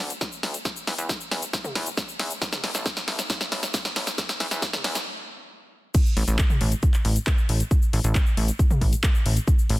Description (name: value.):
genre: uplifting trance.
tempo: 136 BPM.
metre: 4/4.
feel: straight.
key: unclear.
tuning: A4 = 440 Hz.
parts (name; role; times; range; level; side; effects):
plucky analog bass; bass; 0.0-9.8 s; A1 to E2; -25 LUFS; equal; sidechain pumping, high-pass filter.
house drum kit; drums; 0.1-9.8 s; crash cymbal, handclaps, hi-hat, shaker, snare drum, toms; -27 LUFS; left 1 dB; high-pass filter on hats, high-pass filter on snare, high-pass filter on toms, high-pass filter on perc, high-pass filter on cymbals.
electronic kick drum; drums; 0.2-9.6 s; none; -21 LUFS; equal; high-pass filter on kick.
room: light reverb.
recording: dense, heavily limited modern master.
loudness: -22 LUFS.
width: side -19 dB against mid.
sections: 0.0-5.9 A section; 5.9-9.8 B section.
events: build-up 0.0-5.9; drum fill 0.0-5.1; stop 5.1-5.9; drop 5.9-9.8.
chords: none.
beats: 0.21 | 0.65 1.09 1.53 1.98 | 2.42 2.86 3.30 3.74 | 4.18 4.62 5.06 5.50 | 5.95 6.39 6.83 7.27 | 7.71 8.15 8.59 9.04 | 9.48.